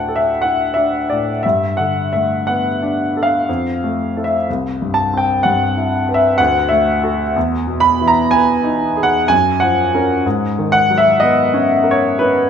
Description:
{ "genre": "classical, impressionist solo piano", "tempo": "61 BPM", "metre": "3/4", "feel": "uneven beats, rubato", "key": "D major", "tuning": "A4 = 440 Hz", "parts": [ { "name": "clear concert grand piano", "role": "solo", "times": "0.0-12.5 s", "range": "C2 to B5", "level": "-13 LUFS", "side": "equal", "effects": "none" } ], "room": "moderate recital hall reverb, RT60 1.3 s", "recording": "minimal, uncompressed stereo recording", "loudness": "-13 LUFS", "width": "side -7 dB against mid", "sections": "0.0-12.5 A section", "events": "none", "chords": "0.0 Dsus2; 1.4 Gadd9; 3.5 Fmaj7; 4.5 Cmaj7; 6.4 D; 7.4 Emaj7; 9.3 F#maj7; 10.3 G#m11", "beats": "0.43 | 1.44 2.46 3.48 | 4.48 5.44 6.39 | 7.36 8.33 9.29 | 10.25 11.21 12.18" }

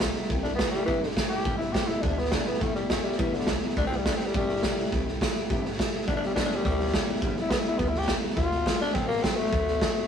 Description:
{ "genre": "rockabilly", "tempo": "208 BPM", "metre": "4/4", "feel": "straight", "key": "G major", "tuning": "A4 = 440 Hz", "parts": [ { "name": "picked steel-string acoustic guitar", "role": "accompaniment", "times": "0.0-10.1 s", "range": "G2 to G4", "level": "-33 LUFS", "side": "left 2 dB", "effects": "none" }, { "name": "upright bass", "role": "bass", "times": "0.0-10.0 s", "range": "G1 to D2", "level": "-35 LUFS", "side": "equal", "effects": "none" }, { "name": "raw garage drum kit", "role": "drums", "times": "0.0-10.0 s", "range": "hi-hat, kick drum, snare drum", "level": "-27 LUFS", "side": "right 1 dB", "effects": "none" }, { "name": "raspy tenor saxophone", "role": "melody", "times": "0.4-10.1 s", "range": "D3 to G4", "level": "-29 LUFS", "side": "left 2 dB", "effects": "none" } ], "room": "light reverb", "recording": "rough rehearsal-room recording", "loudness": "-24 LUFS", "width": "side -8 dB against mid", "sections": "0.0-10.1 A section", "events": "tenor saxophone solo 0.0-10.1", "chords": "0.3 C6; 1.5 G6; 3.8 C6; 6.1 G6; 8.4 D6", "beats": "0.02 | 0.30 0.59 0.88 1.17 | 1.46 1.75 2.04 2.32 | 2.61 2.90 3.19 3.48 | 3.77 4.05 4.34 4.63 | 4.92 5.21 5.50 5.78 | 6.07 6.36 6.65 6.94 | 7.22 7.51 7.80 8.09 | 8.38 8.66 8.95 9.24 | 9.53 9.81" }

